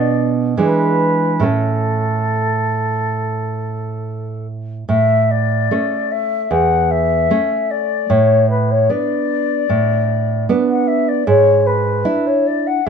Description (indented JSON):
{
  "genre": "romantic duo for flute and classical guitar",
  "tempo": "68-77 BPM",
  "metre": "4/4",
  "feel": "rubato",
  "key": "A major",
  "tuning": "A4 = 440 Hz",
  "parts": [
    { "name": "mellow concert flute", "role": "melody", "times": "0.0-12.9 s", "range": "A4 to F#5", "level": "-17 LUFS", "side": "left 4 dB", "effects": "none" },
    { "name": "nylon-string guitar", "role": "accompaniment", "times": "0.0-12.9 s", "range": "E2 to E4", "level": "-17 LUFS", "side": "right 4 dB", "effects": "none" }
  ],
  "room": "moderate studio reverb, RT60 0.8 s",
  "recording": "minimal, uncompressed stereo recording",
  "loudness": "-14 LUFS",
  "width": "side -6 dB against mid",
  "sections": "0.0-4.9 A section; 4.9-12.9 A section",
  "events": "none",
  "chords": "0.0 Bm; 0.6 E7; 1.4 A; 8.1 Bm7/A; 11.3 E7/G#",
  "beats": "0.57 | 1.43 2.30 3.17 4.04 | 4.89 5.70 6.51 7.30 | 8.10 8.90 9.69 10.48 | 11.26 12.04 12.84"
}